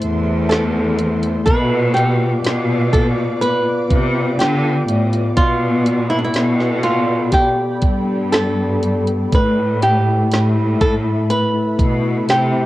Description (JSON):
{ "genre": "pop ballad", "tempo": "61 BPM", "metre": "4/4", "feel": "straight", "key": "A minor", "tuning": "A4 = 436 Hz", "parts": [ { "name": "mellow tine electric piano", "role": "accompaniment", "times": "0.0-12.7 s", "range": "A3 to G4", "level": "-22 LUFS", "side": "left 3 dB", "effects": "medium stereo tremolo, cassette tape" }, { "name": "ethereal airy pad", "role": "sustained chords", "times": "0.0-12.7 s", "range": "A4 to D6", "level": "-27 LUFS", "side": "equal", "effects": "ensemble chorus, built-in reverb, cassette tape" }, { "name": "rich symphonic cello section", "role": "bass", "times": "0.0-12.7 s", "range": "E2 to D3", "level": "-19 LUFS", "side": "equal", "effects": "none" }, { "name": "smooth R&B drum kit", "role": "drums", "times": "0.0-12.5 s", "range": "hi-hat, kick drum, snare drum", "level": "-18 LUFS", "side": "equal", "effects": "cassette tape" }, { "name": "flamenco guitar", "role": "melody", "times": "0.5-12.7 s", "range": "D4 to B4", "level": "-20 LUFS", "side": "right 1 dB", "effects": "cassette tape" } ], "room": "light reverb", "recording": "home recording on cassette", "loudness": "-14 LUFS", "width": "side -16 dB against mid", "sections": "0.0-12.7 A section", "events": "none", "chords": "0.0 Am; 1.5 Bdim; 5.4 Gadd9/B; 9.3 Asus2" }